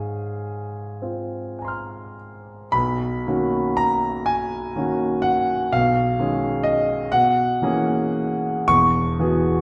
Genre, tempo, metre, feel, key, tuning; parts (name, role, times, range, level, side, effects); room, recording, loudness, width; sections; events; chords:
classical, impressionist solo piano; 34-44 BPM (dotted quarters); 6/8; rubato; B major; A4 = 438 Hz
warm concert grand piano; solo; 0.0-9.6 s; E1 to F6; -22 LUFS; equal
wet recital hall reverb, RT60 1.4 s; recorded in a church or concert hall; -22 LUFS; mono
0.0-2.7 A section; 2.7-9.6 B section
0.0 Ab69; 2.7 Bmaj9; 5.7 C#9/B; 7.1 F#9/B; 8.7 E69